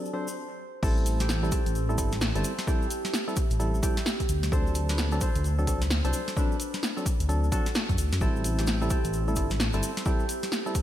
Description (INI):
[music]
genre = UK garage, two-step garage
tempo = 130 BPM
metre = 4/4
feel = swing 62% on 16ths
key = A dorian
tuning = A4 = 437 Hz
[part]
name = Celtic harp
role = melody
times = 0.0-10.8 s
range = C4 to C5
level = -35 LUFS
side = right 1 dB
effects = analog delay
[part]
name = percussive organ stab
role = stabs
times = 0.0-10.8 s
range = F#3 to A4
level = -33 LUFS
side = equal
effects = chorus, cassette tape, analog delay
[part]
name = tube shaker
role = percussion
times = 0.1-10.8 s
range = none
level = -40 LUFS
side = left 3 dB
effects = none
[part]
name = dark detuned saw bass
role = bass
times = 0.8-9.8 s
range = G1 to F#2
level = -27 LUFS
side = equal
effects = sidechain pumping
[part]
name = electronic kick drum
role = drums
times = 0.8-10.8 s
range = none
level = -28 LUFS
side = equal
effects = none
[part]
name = punchy analog drum machine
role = drums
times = 0.8-10.8 s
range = crash cymbal, hi-hat, snare drum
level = -32 LUFS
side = equal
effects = none
[sound]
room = light reverb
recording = none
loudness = -24 LUFS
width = side -12 dB against mid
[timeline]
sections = 0.8-10.8 A section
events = stop 0.4-0.8; drop 0.8-10.8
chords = 0.0 D7; 0.8 Am7; 4.3 D7; 8.2 Am7